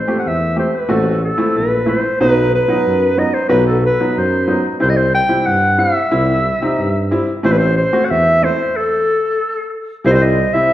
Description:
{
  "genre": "klezmer",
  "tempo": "92 BPM",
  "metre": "2/4",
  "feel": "straight",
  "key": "A dorian sharp4",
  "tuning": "A4 = 440 Hz",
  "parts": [
    { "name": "breathy clarinet", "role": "melody", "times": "0.0-10.7 s", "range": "A4 to G5", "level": "-16 LUFS", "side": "equal", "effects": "none" },
    { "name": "clear upright piano", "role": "accompaniment", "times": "0.1-10.7 s", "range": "F#3 to G4", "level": "-19 LUFS", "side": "equal", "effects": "none" },
    { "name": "warm tuba", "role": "bass", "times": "0.3-10.7 s", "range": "A1 to G2", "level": "-18 LUFS", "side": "equal", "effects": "none" }
  ],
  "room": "wet recital hall reverb, RT60 1.6 s",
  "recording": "recorded in a church or concert hall",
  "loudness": "-13 LUFS",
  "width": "side -13 dB against mid",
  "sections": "0.0-10.1 A section",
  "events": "stop 8.7-10.1",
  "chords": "0.0 Am; 2.2 B; 4.8 C; 7.4 Am; 10.1 C"
}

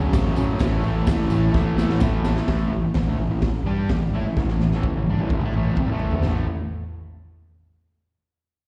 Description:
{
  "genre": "garage rock duo or trio",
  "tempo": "128 BPM",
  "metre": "4/4",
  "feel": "straight",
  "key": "A mixolydian",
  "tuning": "A4 = 440 Hz",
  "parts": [
    { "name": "fuzz guitar", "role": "riff", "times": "0.0-6.5 s", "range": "F#2 to G4", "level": "-26 LUFS", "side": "equal", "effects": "distortion, slapback echo" },
    { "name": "fuzz fingered electric bass", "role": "bass", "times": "0.0-6.5 s", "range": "G1 to A2", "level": "-27 LUFS", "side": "equal", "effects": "overdrive" },
    { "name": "raw garage drum kit", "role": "drums", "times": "0.1-6.3 s", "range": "hi-hat, kick drum, snare drum, toms", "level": "-27 LUFS", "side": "equal", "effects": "none" },
    { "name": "tambourine", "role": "percussion", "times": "0.1-2.4 s", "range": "none", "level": "-49 LUFS", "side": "equal", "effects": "none" }
  ],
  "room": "light reverb",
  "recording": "live gig heard through the venue's PA, recital hall reverb",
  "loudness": "-22 LUFS",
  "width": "mono",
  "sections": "0.0-2.5 A section; 2.5-6.2 B section; 6.2-8.1 C section",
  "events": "drum fill 1.5-2.5, 4.4-6.2",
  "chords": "0.0 F#m/A; 0.6 A5"
}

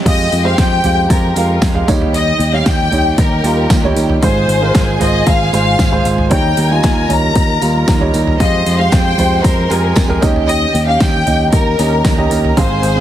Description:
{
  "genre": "piano-driven pop",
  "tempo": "115 BPM",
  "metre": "4/4",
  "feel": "straight",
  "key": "unclear",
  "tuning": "A4 = 440 Hz",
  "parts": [
    { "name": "warm upright piano", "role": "accompaniment", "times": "0.0-13.0 s", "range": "Ab2 to F5", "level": "-18 LUFS", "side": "right 5 dB", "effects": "none" },
    { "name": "rich studio violin section", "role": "melody", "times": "0.1-13.0 s", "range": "Bb4 to Bb5", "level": "-18 LUFS", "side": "left 4 dB", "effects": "none" },
    { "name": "bright studio violin section", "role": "second line", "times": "0.1-13.0 s", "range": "F4 to C6", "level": "-23 LUFS", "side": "equal", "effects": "digital delay" },
    { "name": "picked electric bass", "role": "bass", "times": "0.1-13.0 s", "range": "Ab1 to F2", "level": "-16 LUFS", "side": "equal", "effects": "none" },
    { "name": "pop drum kit", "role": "drums", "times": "0.1-13.0 s", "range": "crash cymbal, hi-hat, kick drum, snare drum, toms", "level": "-15 LUFS", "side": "equal", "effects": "overdrive" },
    { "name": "tambourine", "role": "percussion", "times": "0.3-13.0 s", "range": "none", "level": "-32 LUFS", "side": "right 7 dB", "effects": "none" }
  ],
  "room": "small room reverb",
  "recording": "heavily compressed radio sound, multiband compression",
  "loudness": "-11 LUFS",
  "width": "side -11 dB against mid",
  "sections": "0.1-13.0 A section",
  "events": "none",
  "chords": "0.1 Fmadd9; 1.9 Eb7; 4.2 Ab6; 6.3 Eb7; 8.4 Fmadd9; 10.2 Eb7"
}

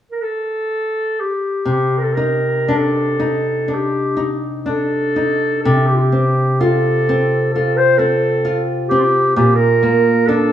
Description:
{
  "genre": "celtic folk, Celtic slow air",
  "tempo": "57-66 BPM",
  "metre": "4/4",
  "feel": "rubato",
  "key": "C dorian",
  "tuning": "A4 = 440 Hz",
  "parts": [
    { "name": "mellow clarinet", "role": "melody", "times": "0.1-10.5 s", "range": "F4 to C5", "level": "-17 LUFS", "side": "right 1 dB", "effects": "none" },
    { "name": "nylon-string guitar", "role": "accompaniment", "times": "1.7-10.5 s", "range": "Bb2 to F4", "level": "-17 LUFS", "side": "left 1 dB", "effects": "none" }
  ],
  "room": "wet stone room reverb, RT60 1.3 s",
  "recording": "band playing live in one room, small room ambience",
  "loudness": "-14 LUFS",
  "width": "side -10 dB against mid",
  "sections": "0.0-1.7 A section; 1.7-10.5 B section",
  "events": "none",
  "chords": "0.0 N.C.; 1.7 Cmadd9; 5.6 F/C; 9.4 Bb"
}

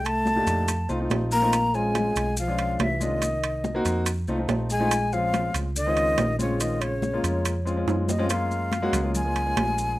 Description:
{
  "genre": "Afro-Cuban jazz",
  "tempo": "142 BPM",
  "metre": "4/4",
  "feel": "straight",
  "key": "Bb minor",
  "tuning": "A4 = 440 Hz",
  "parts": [
    { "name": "breathy mellow jazz flute", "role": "melody", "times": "0.0-10.0 s", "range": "Db5 to Bb5", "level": "-26 LUFS", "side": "left 1 dB", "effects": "none" },
    { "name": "breathy trombone", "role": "second line", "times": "0.0-7.7 s", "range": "Db3 to Bb3", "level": "-30 LUFS", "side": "left 1 dB", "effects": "none" },
    { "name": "hollow-body short-scale picked electric bass", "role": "bass", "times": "0.0-10.0 s", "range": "Bb1 to Gb2", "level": "-28 LUFS", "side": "right 1 dB", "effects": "none" },
    { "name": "congas", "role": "percussion", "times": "0.0-10.0 s", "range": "none", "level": "-34 LUFS", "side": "left 3 dB", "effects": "none" },
    { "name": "maracas", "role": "percussion", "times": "0.1-10.0 s", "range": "none", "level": "-35 LUFS", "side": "left 2 dB", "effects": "none" },
    { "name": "timbales", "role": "percussion", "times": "0.1-9.8 s", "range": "none", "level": "-30 LUFS", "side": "right 6 dB", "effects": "none" },
    { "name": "warm grand piano", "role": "accompaniment", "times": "0.4-10.0 s", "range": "Bb2 to G4", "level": "-29 LUFS", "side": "left 1 dB", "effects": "none" }
  ],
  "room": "moderate studio reverb, RT60 0.6 s",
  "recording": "rough home demo mix",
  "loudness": "-22 LUFS",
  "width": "side -16 dB against mid",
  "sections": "0.0-8.3 A section; 8.3-10.0 B section",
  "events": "drum fill 7.9-8.3",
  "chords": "0.0 Cm7; 0.7 F7; 1.5 Bbm7; 2.4 Bdim7; 3.2 Cm7b5; 4.1 F7; 4.9 Bbm7; 8.3 Gbmaj9"
}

